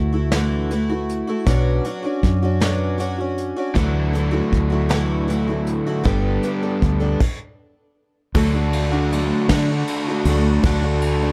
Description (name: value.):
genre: folk rock and heartland rock.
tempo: 52 BPM (dotted quarters).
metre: 6/8.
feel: straight.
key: D major.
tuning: A4 = 439 Hz.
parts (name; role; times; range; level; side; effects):
picked twelve-string acoustic guitar; accompaniment; 0.0-11.3 s; B2 to A4; -25 LUFS; equal; none.
fingered electric bass; bass; 0.0-11.3 s; G1 to D3; -23 LUFS; equal; none.
soft brush drum kit; drums; 0.3-11.2 s; crash cymbal, hi-hat, kick drum, ride cymbal, snare drum; -25 LUFS; equal; none.
overdriven electric guitar; riff; 3.7-11.3 s; G2 to A4; -26 LUFS; equal; none.
room: little or no reverb.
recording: dark, warm production.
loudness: -20 LUFS.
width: mono.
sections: 0.0-8.4 A section; 8.4-11.3 B section.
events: stop 7.2-8.4.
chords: 0.0 Dadd9; 1.5 Bmadd9; 3.8 Dadd9; 6.1 Gadd9; 8.4 D.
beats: 0.33 | 1.47 2.62 | 3.77 4.92 | 6.06 7.21 | 8.36 9.50 | 10.65.